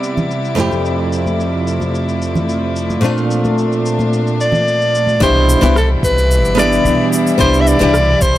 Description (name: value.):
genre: sunset chillout.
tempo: 110 BPM.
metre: 4/4.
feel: straight.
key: C major.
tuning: A4 = 444 Hz.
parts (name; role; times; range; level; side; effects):
nylon-string guitar; accompaniment; 0.0-7.9 s; F2 to G4; -16 LUFS; equal; auto-pan, analog delay.
rich chamber string section; sustained chords; 0.0-8.4 s; Bb2 to E4; -20 LUFS; left 1 dB; none.
electronic cabasa and rim click; drums; 0.0-8.4 s; none; -27 LUFS; left 1 dB; overdrive, low-pass filter on perc, low-pass filter on snare.
drifting glass-harmonics texture; texture; 0.0-5.2 s; D5 to D6; -31 LUFS; right 2 dB; chorus, built-in reverb.
congas; percussion; 0.2-5.2 s; none; -23 LUFS; right 1 dB; none.
breathy soprano saxophone; melody; 4.4-8.4 s; A4 to E5; -15 LUFS; equal; analog delay.
upright bass; bass; 5.2-8.4 s; G1 to C2; -15 LUFS; equal; none.
electronic kick drum; drums; 5.2-8.3 s; none; -18 LUFS; equal; overdrive.
room: light reverb, studio ambience.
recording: dry, gritty hardware recording, transformer saturation.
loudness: -12 LUFS.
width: side -14 dB against mid.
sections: 0.0-5.2 A section; 5.2-8.4 B section.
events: none.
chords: 0.0 Cmaj7; 0.6 Fmaj7; 3.0 Bbmaj7; 5.2 Cmaj7.